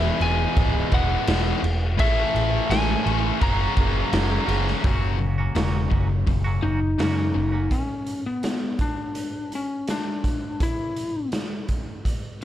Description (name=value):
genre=quiet-loud alternative rock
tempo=84 BPM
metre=4/4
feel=straight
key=unclear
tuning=A4 = 440 Hz
part: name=lightly driven lead guitar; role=melody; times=0.0-11.3 s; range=B3 to A#5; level=-27 LUFS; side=left 2 dB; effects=none
part: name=distorted electric guitar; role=riff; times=0.0-7.7 s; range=E2 to A4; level=-27 LUFS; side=left 10 dB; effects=overdrive
part: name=tight distorted guitar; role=riff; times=0.0-4.8 s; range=E2 to A3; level=-28 LUFS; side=right 15 dB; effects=distortion
part: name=picked electric bass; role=bass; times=0.0-7.7 s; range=C#1 to F#2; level=-24 LUFS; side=right 1 dB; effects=none
part: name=raw garage drum kit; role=drums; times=0.2-12.4 s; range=crash cymbal, hi-hat, kick drum, snare drum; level=-26 LUFS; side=equal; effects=none
part: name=twangy electric guitar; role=arpeggios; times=4.8-7.7 s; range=F#2 to F#4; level=-32 LUFS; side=right 4 dB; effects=harmonic tremolo, tape echo
room=light reverb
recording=none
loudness=-21 LUFS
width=side -12 dB against mid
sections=0.0-4.8 A section; 4.8-7.7 B section; 7.7-12.4 C section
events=none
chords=0.0 E; 2.0 A; 3.4 F#; 7.7 N.C.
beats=0.57 1.28 | 1.99 2.70 3.41 4.13 | 4.84 5.56 6.27 6.99 | 7.71 8.43 9.15 9.88 | 10.60 11.32 12.04